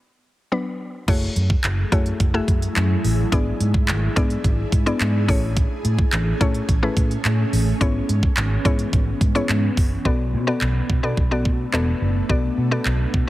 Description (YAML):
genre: dance-pop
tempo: 107 BPM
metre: 4/4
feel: straight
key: unclear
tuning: A4 = 442 Hz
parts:
  - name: mallet-like synth pluck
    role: accompaniment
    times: 0.0-13.1 s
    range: F#3 to E5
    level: -25 LUFS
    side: left 2 dB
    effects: chorus, sidechain pumping
  - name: ethereal airy pad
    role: sustained chords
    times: 1.8-13.3 s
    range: E3 to G#4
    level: -29 LUFS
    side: equal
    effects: ensemble chorus, built-in reverb, sidechain pumping
  - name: vintage muted fingered electric bass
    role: bass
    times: 1.1-13.2 s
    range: E1 to B2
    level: -22 LUFS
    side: equal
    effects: sidechain pumping
  - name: pop drum kit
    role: drums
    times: 1.1-13.3 s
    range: crash cymbal, handclaps, hi-hat, kick drum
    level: -21 LUFS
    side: equal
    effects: none
room: light reverb, digital ambience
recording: heavily compressed radio sound, multiband compression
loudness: -18 LUFS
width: side -16 dB against mid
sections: 0.0-1.1 A section; 1.1-10.1 B section; 10.1-13.3 C section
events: break 0.0-1.1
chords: 0.0 Bm; 1.1 F#m9; 3.3 E7/G#; 5.3 Amaj7; 7.8 C#m7/G#; 10.1 Bm7